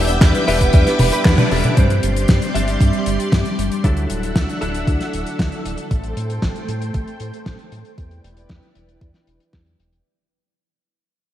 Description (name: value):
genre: italo disco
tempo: 116 BPM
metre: 4/4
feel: straight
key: unclear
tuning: A4 = 441 Hz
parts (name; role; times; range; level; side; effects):
- warm grand piano; melody; 0.0-1.2 s; E4 to E5; -29 LUFS; equal; none
- string machine, full ensemble; sustained chords; 0.0-10.0 s; G3 to D6; -24 LUFS; equal; ensemble chorus
- direct-recorded clean electric guitar; arpeggios; 0.0-1.8 s; G3 to B4; -25 LUFS; right 2 dB; ensemble chorus, digital delay
- direct-recorded clean electric guitar; stabs; 0.0-5.9 s; F#3 to E5; -23 LUFS; left 1 dB; ensemble chorus, digital delay
- round analog bass; bass; 0.0-10.0 s; D1 to A2; -22 LUFS; equal; none
- damped 70s drum kit; drums; 0.1-10.0 s; handclaps, hi-hat, snare drum, toms; -21 LUFS; equal; low-pass filter on hats, studio reverb, low-pass filter on toms, low-pass filter on snare, low-pass filter on room, gated reverb
- electronic kick drum; drums; 0.2-9.6 s; none; -16 LUFS; equal; overdrive, studio reverb
room: moderate lush hall reverb, RT60 2.7 s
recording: bright 1980s-style digital production, vinyl crackle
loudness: -15 LUFS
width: side -12 dB against mid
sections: 0.0-1.8 A section; 1.8-10.0 B section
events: band accent 1.3; fade-out 1.8-10.0; filter sweep on string machine 1.8-10.0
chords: 0.0 Em7; 1.8 Gsus4; 3.8 Dadd9; 5.9 Am7; 8.0 Em7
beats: 0.22 0.74 1.25 | 1.77 2.29 2.81 3.32 | 3.84 4.36 4.88 5.39 | 5.91 6.43 6.94 7.46 | 7.98 8.50 9.01 9.53